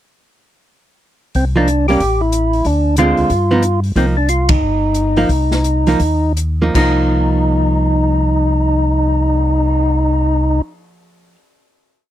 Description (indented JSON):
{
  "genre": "soul jazz organ trio",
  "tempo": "155-184 BPM",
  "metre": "4/4",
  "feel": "swing 63% on 8ths",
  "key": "C dorian",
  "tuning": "A4 = 438 Hz",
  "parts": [
    { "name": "open jazz drum kit", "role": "drums", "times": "1.3-9.8 s", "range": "crash cymbal, cymbal swell, hi-hat, kick drum, ride cymbal, snare drum", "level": "-21 LUFS", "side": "equal", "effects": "none" },
    { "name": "percussive tonewheel organ", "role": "melody", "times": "1.4-10.6 s", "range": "C4 to G4", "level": "-16 LUFS", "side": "equal", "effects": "slow rotary speaker, overdrive" },
    { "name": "mellow tonewheel organ", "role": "bass", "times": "1.4-10.6 s", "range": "G1 to G2", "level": "-16 LUFS", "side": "equal", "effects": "slow rotary speaker" },
    { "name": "archtop guitar, miked and amplified", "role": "accompaniment", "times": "1.6-11.4 s", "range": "D3 to F4", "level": "-17 LUFS", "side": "right 3 dB", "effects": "none" }
  ],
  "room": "little or no reverb",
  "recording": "dry, close 1970s-style studio recording",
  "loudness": "-13 LUFS",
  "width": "side -12 dB against mid",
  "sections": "1.3-6.7 A section; 6.7-9.9 final chord",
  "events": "slowing down 4.0-6.7; band accent 4.4",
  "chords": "1.3 Cm11; 2.0 A5; 2.7 Dm7b5; 3.3 Gaug7; 4.0 Cm7"
}